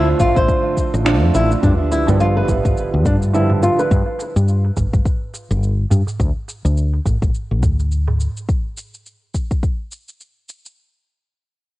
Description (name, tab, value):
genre	organic downtempo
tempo	105 BPM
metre	4/4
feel	swing 58% on 16ths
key	unclear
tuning	A4 = 441 Hz
part	felt-muted upright piano	accompaniment	0.0-3.9 s	D3 to E5	-21 LUFS	right 5 dB	sidechain pumping, low-pass filter, analog delay
part	flamenco guitar	arpeggios	0.0-4.3 s	D4 to C5	-20 LUFS	left 1 dB	low-pass filter, analog delay
part	woody fretless electric bass	bass	0.0-8.3 s	G1 to G2	-16 LUFS	left 1 dB	sidechain pumping
part	darbuka	percussion	0.1-8.3 s	none	-27 LUFS	right 3 dB	none
part	electronic kick drum	drums	0.2-9.8 s	none	-19 LUFS	left 1 dB	cassette tape
part	electronic shaker and finger snaps	drums	0.2-10.7 s	none	-30 LUFS	equal	cassette tape
part	sub drop	sound effects	1.6-3.9 s	none	-25 LUFS	left 1 dB	none
room	light reverb, small room ambience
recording	home recording on cassette, nothing above 10.3 kHz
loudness	-15 LUFS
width	side -17 dB against mid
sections	0.0-1.6 A section; 1.6-10.8 B section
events	impact 1.6-3.9; filter sweep on fretless electric bass 1.6-8.5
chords	0.0 Dm7; 1.6 G7; 6.2 D5